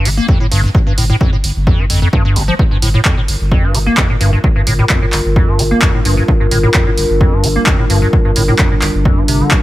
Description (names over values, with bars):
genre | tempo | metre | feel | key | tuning
acid house | 130 BPM | 4/4 | straight | G minor | A4 = 440 Hz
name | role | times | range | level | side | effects
liquid acid bass | riff | 0.0-9.6 s | G1 to Bb3 | -15 LUFS | equal | overdrive, wide subtle chorus, tape echo
saturated sub bass | bass | 0.1-9.4 s | G1 | -16 LUFS | equal | sidechain pumping
punchy analog drum machine | drums | 0.1-9.6 s | handclaps, hi-hat | -18 LUFS | right 1 dB | none
electronic kick drum | drums | 0.3-9.6 s | none | -14 LUFS | equal | none
dark analog pad | sustained chords | 2.6-9.6 s | G3 to Bb4 | -19 LUFS | left 1 dB | wide subtle chorus, sidechain pumping
room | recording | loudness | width
digital ambience | none | -10 LUFS | side -16 dB against mid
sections
0.0-9.6 A section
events
none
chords
0.0 Gm7